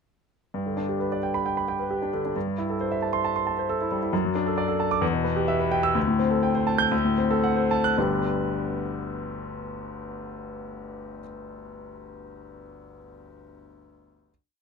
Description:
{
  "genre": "classical, virtuoso piano study",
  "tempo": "110-137 BPM",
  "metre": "4/4",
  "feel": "rubato",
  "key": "G major",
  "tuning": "A4 = 440 Hz",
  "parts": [
    { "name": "warm concert grand piano", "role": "solo", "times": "0.5-14.3 s", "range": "G1 to G6", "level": "-24 LUFS", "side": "equal", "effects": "none" }
  ],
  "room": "little or no reverb",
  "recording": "close, detailed microphones",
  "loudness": "-23 LUFS",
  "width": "side -5 dB against mid",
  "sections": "0.5-8.0 A section; 8.0-12.1 final chord",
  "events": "slowing down 3.2-8.0",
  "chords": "0.5 G; 2.4 Am7/G; 4.1 D/F#; 5.0 Em; 6.0 D7sus4; 6.9 D7; 8.0 G"
}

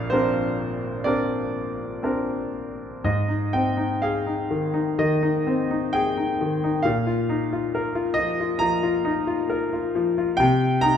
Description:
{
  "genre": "classical, lyrical solo piano",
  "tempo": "59-69 BPM",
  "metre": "4/4",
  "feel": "rubato",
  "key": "unclear",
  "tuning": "A4 = 436 Hz",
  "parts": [
    { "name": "clear grand piano", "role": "solo", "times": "0.0-11.0 s", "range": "Bb1 to Bb5", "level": "-21 LUFS", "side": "left 1 dB", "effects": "none" }
  ],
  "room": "moderate recital hall reverb, RT60 1.4 s",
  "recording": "minimal, uncompressed stereo recording",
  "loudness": "-21 LUFS",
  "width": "side -8 dB against mid",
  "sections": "0.0-3.0 A section; 3.0-11.0 B section",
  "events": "none",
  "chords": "0.0 Bbadd9; 3.0 Ab; 6.8 Bbsus4; 10.4 Cm"
}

